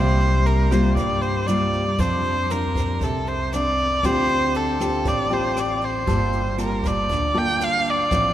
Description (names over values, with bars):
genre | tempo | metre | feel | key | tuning
bossa nova | 118 BPM | 4/4 | straight | unclear | A4 = 440 Hz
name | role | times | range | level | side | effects
rich erhu | melody | 0.0-8.3 s | A4 to G5 | -22 LUFS | equal | none
nylon-string guitar | accompaniment | 0.0-8.3 s | G2 to A4 | -24 LUFS | left 1 dB | none
upright bass | bass | 0.0-8.3 s | G1 to G2 | -25 LUFS | equal | none
jazz brush drum kit | drums | 0.2-8.2 s | hi-hat, kick drum, rim click | -31 LUFS | right 1 dB | none
room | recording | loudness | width
wet cathedral reverb, RT60 5.7 s | recorded in a church or concert hall | -19 LUFS | side -12 dB against mid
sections
0.0-8.3 A section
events
none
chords
0.0 C7sus4; 2.0 F6; 4.0 Dm7; 6.1 Gm9